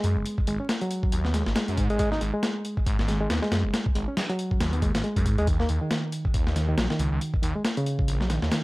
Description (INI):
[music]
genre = breakbeat, breaks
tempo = 138 BPM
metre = 4/4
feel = swing 58% on 16ths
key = unclear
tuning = A4 = 440 Hz
[part]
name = bright reed electric piano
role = riff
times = 0.0-8.6 s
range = Db3 to Eb4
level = -29 LUFS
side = equal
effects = tube saturation, tape echo
[part]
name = phased detuned saw bass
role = bass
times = 0.0-8.5 s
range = Gb1 to Ab2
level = -26 LUFS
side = equal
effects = phaser
[part]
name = breakbeat sampler-style drum kit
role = drums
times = 0.0-8.6 s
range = hi-hat, kick drum, snare drum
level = -26 LUFS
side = equal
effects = small room ambience
[sound]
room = digital ambience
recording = vinyl crackle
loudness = -23 LUFS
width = side -21 dB against mid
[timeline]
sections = 0.0-8.6 A section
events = none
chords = 0.0 Ab5; 5.5 Eb7(no3)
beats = | 0.26 0.69 1.13 1.56 | 2.00 2.43 2.87 3.30 | 3.73 4.17 4.61 5.04 | 5.47 5.91 6.34 6.78 | 7.21 7.65 8.08 8.52